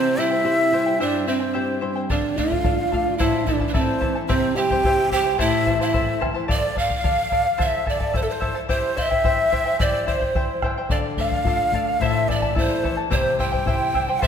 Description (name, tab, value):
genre	andean folk, Andean ensemble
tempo	109 BPM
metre	2/4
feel	straight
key	unclear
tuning	A4 = 440 Hz
part	breathy mellow quena	melody	0.0-14.3 s	A4 to G5	-23 LUFS	equal	none
part	breathy mellow pan flute	second line	0.0-14.3 s	C4 to G5	-25 LUFS	right 4 dB	none
part	charango	accompaniment	0.0-14.3 s	E4 to A5	-27 LUFS	left 3 dB	none
part	flamenco guitar	accompaniment	0.0-6.5, 10.9-14.3 s	G2 to A4	-28 LUFS	left 5 dB	none
part	bombo	percussion	2.1-14.3 s	none	-25 LUFS	left 1 dB	none
room	wet concert hall reverb, RT60 2.2 s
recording	minimal, uncompressed stereo recording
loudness	-19 LUFS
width	side -8 dB against mid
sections	0.0-6.5 A section; 6.5-14.3 A section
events	none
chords	0.0 C; 2.1 Dm; 3.2 Am; 4.3 C; 5.4 Am; 6.5 Dm; 7.6 Am; 8.7 C; 10.9 Dm; 12.0 Am; 13.1 C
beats	0.45 | 1.00 1.55 | 2.10 2.65 | 3.20 3.75 | 4.30 4.85 | 5.40 5.95 | 6.50 7.04 | 7.59 8.14 | 8.70 9.25 | 9.80 10.35 | 10.90 11.46 | 12.01 12.56 | 13.12 13.67 | 14.22